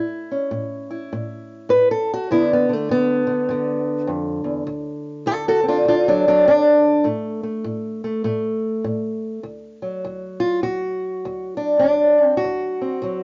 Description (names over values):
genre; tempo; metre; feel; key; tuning
acoustic country blues, solo or duo; 101 BPM; 4/4; swing 62% on 8ths; D major; A4 = 442 Hz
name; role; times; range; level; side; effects
fingerpicked old ladder-braced acoustic guitar; solo; 0.0-13.2 s; D2 to B4; -20 LUFS; equal; none
room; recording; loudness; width
light reverb; band playing live in one room, nothing above 7.5 kHz; -20 LUFS; mono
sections
0.0-9.4 A section; 9.4-13.2 B section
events
steel-string acoustic guitar solo 0.0-9.4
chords
0.0 A; 2.3 G7; 4.7 D7; 7.1 N.C.; 9.4 D